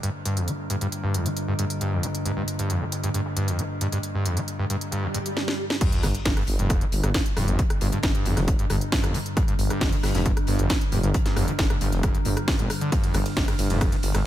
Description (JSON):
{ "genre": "driving peak-time techno", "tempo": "135 BPM", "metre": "4/4", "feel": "straight", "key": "unclear", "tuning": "A4 = 440 Hz", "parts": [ { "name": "screaming distorted acid line", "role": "riff", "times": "0.0-14.2 s", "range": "F2 to G3", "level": "-28 LUFS", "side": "equal", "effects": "distortion, lush chorus, sidechain pumping, dub echo" }, { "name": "metallic inharmonic drone", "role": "drone", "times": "0.0-14.3 s", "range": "G2 to D3", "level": "-31 LUFS", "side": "equal", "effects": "chorus, built-in reverb, sidechain pumping" }, { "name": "crisp fusion drum kit", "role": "drums", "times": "0.0-14.1 s", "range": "hi-hat, snare drum", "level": "-41 LUFS", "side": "left 3 dB", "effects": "none" }, { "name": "techno drum kit", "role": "drums", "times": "0.0-14.2 s", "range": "crash cymbal, hi-hat, ride cymbal, rim click, snare drum", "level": "-29 LUFS", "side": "equal", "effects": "overdrive" }, { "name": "swell and sub drop", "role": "sound effects", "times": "5.1-7.6 s", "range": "none", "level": "-32 LUFS", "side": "right 1 dB", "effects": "none" }, { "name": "electronic kick drum", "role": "drums", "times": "5.8-13.9 s", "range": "none", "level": "-24 LUFS", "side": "equal", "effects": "overdrive" }, { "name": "detuned saw bass", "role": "bass", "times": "6.0-14.2 s", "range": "F1 to G1", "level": "-26 LUFS", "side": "equal", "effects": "tube saturation, sidechain pumping" } ], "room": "digital ambience", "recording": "none", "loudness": "-22 LUFS", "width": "side -13 dB against mid", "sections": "0.0-5.8 A section; 5.8-14.3 B section", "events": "filter sweep on acid bass 0.0-5.8; swell 5.1-5.8; drum fill 5.4-5.8; drop 5.8-14.3; impact 5.8-7.6", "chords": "0.0 G5" }